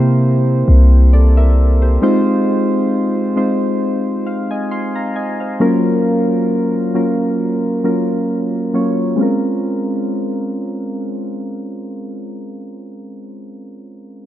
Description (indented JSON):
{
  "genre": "contemporary R&B",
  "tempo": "67 BPM",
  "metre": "4/4",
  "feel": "swing 54% on 16ths",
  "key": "Bb minor",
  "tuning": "A4 = 438 Hz",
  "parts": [
    { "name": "soft electric-piano-like synth keys", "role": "accompaniment", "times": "0.0-14.3 s", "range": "Gb3 to C6", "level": "-16 LUFS", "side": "equal", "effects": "chorus, low-pass filter" },
    { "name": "warm 808-style bass", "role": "bass", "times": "0.0-2.0 s", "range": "C2 to C3", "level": "-10 LUFS", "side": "equal", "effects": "none" }
  ],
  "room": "light reverb",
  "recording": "none",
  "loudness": "-13 LUFS",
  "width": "side -13 dB against mid",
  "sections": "0.0-9.2 A section; 9.2-12.8 B section",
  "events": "filter sweep on synth keys 0.0-9.2",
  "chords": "0.0 C7; 2.0 Fm7; 5.6 Gbmaj7; 9.2 Bbm9"
}